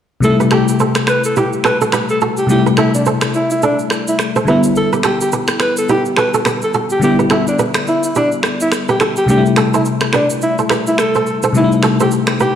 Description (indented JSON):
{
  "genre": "afrobeats",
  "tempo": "106 BPM",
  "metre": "4/4",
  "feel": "swing 58% on 16ths",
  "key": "unclear",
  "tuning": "A4 = 439 Hz",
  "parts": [
    { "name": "breathy alto saxophone", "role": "melody", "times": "0.2-12.5 s", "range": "D4 to B4", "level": "-17 LUFS", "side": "equal", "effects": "digital delay" },
    { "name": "bell-like FM electric piano", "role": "accompaniment", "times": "0.2-12.6 s", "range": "C3 to E4", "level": "-16 LUFS", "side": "left 3 dB", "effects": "chorus" },
    { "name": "electronic shaker, finger snaps and rim click", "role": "drums", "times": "0.2-12.6 s", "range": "none", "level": "-20 LUFS", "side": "right 1 dB", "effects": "overdrive" },
    { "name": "kora", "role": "riff", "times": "0.4-12.5 s", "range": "E4 to C5", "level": "-19 LUFS", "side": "right 5 dB", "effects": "digital delay" }
  ],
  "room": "moderate plate reverb, RT60 2.1 s",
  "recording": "played on a big sound system in a bare room, stone room reverb",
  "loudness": "-12 LUFS",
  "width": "side -9 dB against mid",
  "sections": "0.2-9.3 A section; 9.3-12.6 B section",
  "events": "kick muted 9.3-12.6",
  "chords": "0.2 C6; 4.5 G6; 9.3 C6",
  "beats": "| 0.23 0.80 1.36 1.93 | 2.49 3.06 3.62 4.19 | 4.76 5.32 5.89 6.46 | 7.02 7.59 8.15 8.72 | 9.29 9.85 10.42 10.98 | 11.55 12.12"
}